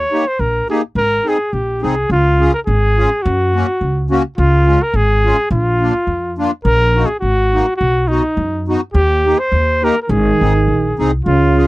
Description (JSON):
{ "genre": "alpine folk", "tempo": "105 BPM", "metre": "2/4", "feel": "swing 54% on 8ths", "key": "Db major", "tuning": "A4 = 440 Hz", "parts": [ { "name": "mellow trumpet", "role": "melody", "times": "0.0-11.7 s", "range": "Eb4 to Db5", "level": "-16 LUFS", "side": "equal", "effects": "none" }, { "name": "accordion", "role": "accompaniment", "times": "0.1-11.7 s", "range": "Ab3 to Ab4", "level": "-17 LUFS", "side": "left 1 dB", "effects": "light tremolo tuning" }, { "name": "upright bass", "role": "bass", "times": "0.4-11.6 s", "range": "Ab1 to Gb2", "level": "-16 LUFS", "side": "equal", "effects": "none" }, { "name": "dark euphonium", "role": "second line", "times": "10.1-11.7 s", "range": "Db3 to Eb3", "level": "-17 LUFS", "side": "right 4 dB", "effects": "none" } ], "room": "little or no reverb", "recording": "dry, close 1970s-style studio recording", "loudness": "-12 LUFS", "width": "side -19 dB against mid", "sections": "0.0-2.1 A section; 2.1-11.7 B section", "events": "none", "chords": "0.0 Eb; 1.0 Abadd9; 2.1 Db; 3.2 Gb; 4.4 Db; 5.5 Bb; 6.7 Ebm/Bb; 7.8 Cb; 9.0 Eb; 10.1 Ab" }